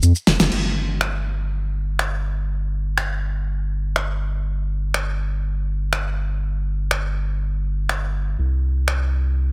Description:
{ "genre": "melodic techno", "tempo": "122 BPM", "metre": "4/4", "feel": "straight", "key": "unclear", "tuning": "A4 = 440 Hz", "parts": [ { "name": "round analog bass", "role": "bass", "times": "0.0-9.5 s", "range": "F1 to F2", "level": "-24 LUFS", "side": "equal", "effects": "none" }, { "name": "deep house drum kit", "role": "drums", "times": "0.0-9.0 s", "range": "crash cymbal, finger snaps, hi-hat, shaker, snare drum", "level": "-24 LUFS", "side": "equal", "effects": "none" } ], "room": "light reverb", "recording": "none", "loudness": "-23 LUFS", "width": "mono", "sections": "0.5-9.5 A section", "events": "drum fill 0.3; band accent 0.4", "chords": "none", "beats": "0.03 | 0.52 1.01 1.50 1.99 | 2.48 2.98 3.47 3.96 | 4.45 4.94 5.44 5.93 | 6.42 6.91 7.40 7.89 | 8.39 8.88 9.37" }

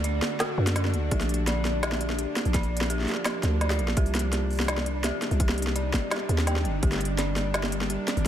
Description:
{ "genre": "half-time drum and bass", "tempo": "168 BPM", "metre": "4/4", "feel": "half-time", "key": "unclear", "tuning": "A4 = 440 Hz", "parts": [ { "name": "bowed-like drone", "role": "sustained chords", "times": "0.0-8.3 s", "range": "C3 to Bb4", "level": "-33 LUFS", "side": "right 1 dB", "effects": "built-in reverb, sidechain pumping" }, { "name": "dark detuned synth bell", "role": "arpeggios", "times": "0.0-8.3 s", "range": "F#4 to G5", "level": "-34 LUFS", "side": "equal", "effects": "chorus, phaser, tremolo, tape echo" }, { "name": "growling 808-style bass", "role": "bass", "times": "0.0-8.3 s", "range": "G1 to F#2", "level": "-27 LUFS", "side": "equal", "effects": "none" }, { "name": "organic electronic drum kit", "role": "drums", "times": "0.0-8.3 s", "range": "hi-hat, snare drum", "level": "-29 LUFS", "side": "equal", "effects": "overdrive" }, { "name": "electronic kick drum", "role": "drums", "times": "1.1-8.3 s", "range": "none", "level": "-25 LUFS", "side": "equal", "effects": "none" } ], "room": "little or no reverb", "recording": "none", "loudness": "-24 LUFS", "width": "side -10 dB against mid", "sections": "0.0-8.3 A section", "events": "none", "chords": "0.0 D; 1.1 Bb; 4.0 Cm; 6.8 Gmadd9", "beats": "0.04 0.40 0.76 | 1.11 1.47 1.83 2.18 | 2.54 2.90 3.26 3.61 | 3.97 4.33 4.68 5.04 | 5.40 5.76 6.11 6.47 | 6.83 7.18 7.54 7.90 | 8.26" }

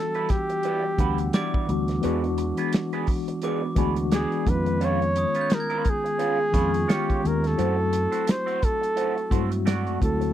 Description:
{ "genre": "lush 1970s-style soul", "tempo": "86 BPM", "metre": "4/4", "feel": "swing 58% on 16ths", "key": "unclear", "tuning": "A4 = 439 Hz", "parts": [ { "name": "mellow flugelhorn", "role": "melody", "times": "0.0-10.3 s", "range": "F#4 to C#5", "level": "-26 LUFS", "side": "equal", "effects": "none" }, { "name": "mellow tine electric piano", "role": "accompaniment", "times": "0.0-10.3 s", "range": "D#3 to F#5", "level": "-28 LUFS", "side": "left 3 dB", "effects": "medium stereo tremolo" }, { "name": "glockenspiel with brass mallets", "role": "texture", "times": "0.0-7.9 s", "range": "C#6 to G#6", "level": "-39 LUFS", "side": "left 2 dB", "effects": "none" }, { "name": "electric guitar through a small old amp", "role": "riff", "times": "0.1-10.2 s", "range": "G3 to D5", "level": "-31 LUFS", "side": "right 8 dB", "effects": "wah" }, { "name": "warm soul drum kit", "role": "drums", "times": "0.1-10.3 s", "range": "hi-hat, kick drum, snare drum", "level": "-24 LUFS", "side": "equal", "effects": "none" }, { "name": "fingered electric bass", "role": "bass", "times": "1.0-10.3 s", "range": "D2 to G2", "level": "-27 LUFS", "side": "equal", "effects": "none" } ], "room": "little or no reverb", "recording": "dry, close 1970s-style studio recording", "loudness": "-22 LUFS", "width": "side -11 dB against mid", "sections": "0.0-10.3 A section", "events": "none", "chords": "0.0 Em7; 2.0 E7; 4.5 C#7/E#; 7.6 F#m7b5", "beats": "0.65 1.34 | 2.03 2.73 3.42 4.11 | 4.81 5.50 6.20 6.89 | 7.58 8.28 8.97 9.66" }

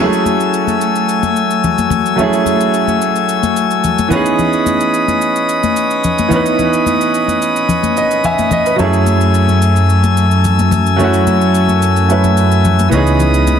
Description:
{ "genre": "amapiano", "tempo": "109 BPM", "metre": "4/4", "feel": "straight", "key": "F# minor", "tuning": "A4 = 440 Hz", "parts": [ { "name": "warm concert grand piano", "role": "accompaniment", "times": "0.0-13.6 s", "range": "E3 to G#5", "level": "-16 LUFS", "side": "right 4 dB", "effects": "none" }, { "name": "pipe organ, sparkling flutes", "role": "sustained chords", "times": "0.0-13.6 s", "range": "F#3 to E6", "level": "-15 LUFS", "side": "left 2 dB", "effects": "none" }, { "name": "shaker", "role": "drums", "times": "0.1-13.6 s", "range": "none", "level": "-29 LUFS", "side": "right 7 dB", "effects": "vintage 12-bit sampler grit" }, { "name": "congas", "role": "percussion", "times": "0.3-13.6 s", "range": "none", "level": "-20 LUFS", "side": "left 6 dB", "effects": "none" }, { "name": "fat analog bass", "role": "bass", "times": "8.8-13.6 s", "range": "C#2 to F#2", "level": "-12 LUFS", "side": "equal", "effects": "none" } ], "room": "light reverb", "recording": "dense, heavily limited modern master", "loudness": "-11 LUFS", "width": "side -8 dB against mid", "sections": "0.0-13.6 A section", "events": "grand piano fill 7.7-8.8", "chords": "0.0 F#m9; 4.1 C#m9; 8.8 F#m9; 12.9 C#m9", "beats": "0.54 1.09 1.64 | 2.19 2.74 3.29 3.84 | 4.39 4.94 5.49 6.04 | 6.59 7.14 7.69 8.24 | 8.79 9.34 9.89 10.44 | 10.99 11.54 12.10 12.65 | 13.20" }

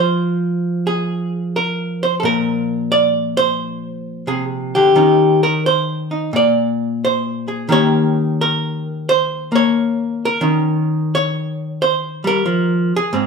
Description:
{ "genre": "solo jazz", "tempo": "88 BPM", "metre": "4/4", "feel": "swing 69% on 8ths", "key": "Eb mixolydian", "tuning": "A4 = 440 Hz", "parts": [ { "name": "archtop guitar, miked and amplified", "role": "solo", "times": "0.0-13.3 s", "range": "Ab2 to D5", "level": "-15 LUFS", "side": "equal", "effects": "none" } ], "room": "wet studio reverb, RT60 0.8 s", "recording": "band playing live in one room", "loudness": "-15 LUFS", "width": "side -5 dB against mid", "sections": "0.0-7.7 A section; 7.7-13.3 A section", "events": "none", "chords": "0.0 N.C.; 2.2 Bb; 5.0 Eb7; 6.3 Bb7; 7.7 Eb7", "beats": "0.18 0.86 1.55 | 2.23 2.91 3.59 4.28 | 4.96 5.64 6.32 7.00 | 7.68 8.37 9.04 9.73 | 10.41 11.09 11.77 12.45 | 13.13" }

